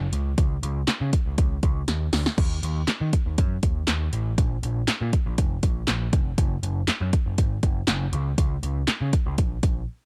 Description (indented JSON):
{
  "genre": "dance-pop",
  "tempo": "120 BPM",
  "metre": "4/4",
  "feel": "straight",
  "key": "unclear",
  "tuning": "A4 = 440 Hz",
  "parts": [
    { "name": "overdriven picked electric bass", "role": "bass", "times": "0.0-9.8 s", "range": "F1 to Eb3", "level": "-29 LUFS", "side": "equal", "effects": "sidechain pumping" },
    { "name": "deep house drum kit", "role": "drums", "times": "0.1-9.8 s", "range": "crash cymbal, handclaps, hi-hat, kick drum, snare drum", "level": "-26 LUFS", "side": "equal", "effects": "overdrive, cassette tape" }
  ],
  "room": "little or no reverb",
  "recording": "home recording on cassette",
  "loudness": "-24 LUFS",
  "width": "mono",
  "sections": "0.0-10.1 A section",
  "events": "drum fill 1.9-2.4; break 9.9",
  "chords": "none"
}